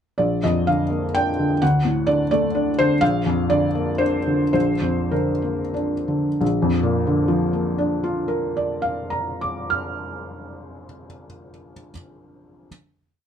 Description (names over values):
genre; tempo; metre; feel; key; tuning
neoclassical minimalist piano; 88-130 BPM; 3/4; rubato; Bb major; A4 = 440 Hz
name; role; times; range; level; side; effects
felt-muted upright piano; solo; 0.2-12.7 s; Bb1 to F6; -19 LUFS; equal; none
room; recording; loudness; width
light reverb; dark, warm production; -19 LUFS; side -8 dB against mid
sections
0.2-6.4 A section; 6.4-10.4 final chord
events
slowing down 2.3-6.4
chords
0.2 Bb; 1.6 D; 3.0 Bb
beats
| 0.19 0.67 1.15 | 1.61 2.08 2.54 | 3.01 3.50 4.00 | 4.54 5.12 5.74 | 6.40 7.08 7.75 | 8.43 9.10 9.77